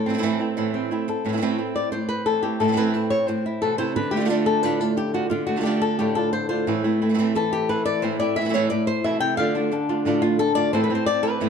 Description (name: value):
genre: flamenco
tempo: 177 BPM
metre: 4/4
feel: straight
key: A minor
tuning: A4 = 440 Hz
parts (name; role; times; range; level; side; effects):
- flamenco guitar; melody; 0.0-11.5 s; A2 to G5; -22 LUFS; left 2 dB; none
- flamenco guitar; stabs; 0.1-11.5 s; A2 to F4; -25 LUFS; right 5 dB; none
room: moderate stone room reverb, RT60 1.0 s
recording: dark, warm production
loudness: -20 LUFS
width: side -6 dB against mid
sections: 0.0-1.2 A section; 1.2-11.5 B section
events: nylon-string guitar solo 1.2-11.5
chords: 0.0 Am; 4.0 Dm; 6.7 Am; 9.4 Dm; 10.7 Am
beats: 0.23 0.57 0.91 | 1.25 1.59 1.93 2.27 | 2.60 2.94 3.29 3.62 | 3.96 4.30 4.64 4.98 | 5.32 5.66 6.00 6.34 | 6.67 7.01 7.35 7.69 | 8.03 8.37 8.71 9.04 | 9.38 9.72 10.06 10.40 | 10.73 11.07 11.41